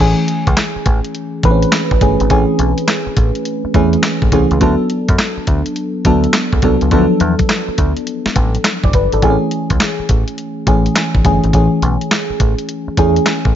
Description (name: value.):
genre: R&B, new jack swing.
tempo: 104 BPM.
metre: 4/4.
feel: swing 66% on 16ths.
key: A major.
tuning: A4 = 440 Hz.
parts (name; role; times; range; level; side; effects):
mellow FM electric piano; accompaniment; 0.0-13.6 s; E3 to D5; -15 LUFS; equal; chorus, phaser.
deep dub picked electric bass; bass; 0.0-13.5 s; F#1 to F#2; -16 LUFS; equal; none.
crisp 8-bit digital drum machine; drums; 0.3-13.5 s; handclaps, hi-hat, kick drum, snare drum; -16 LUFS; equal; none.
room: digital ambience.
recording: nothing above 7.6 kHz.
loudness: -12 LUFS.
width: side -10 dB against mid.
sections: 0.0-13.6 A section.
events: none.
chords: 0.0 Amaj7; 4.6 D6; 9.2 Amaj7.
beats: 0.57 1.15 1.72 | 2.30 2.88 3.46 4.03 | 4.61 5.19 5.76 6.34 | 6.92 7.49 8.07 8.65 | 9.22 9.80 10.38 10.96 | 11.53 12.11 12.69 13.26.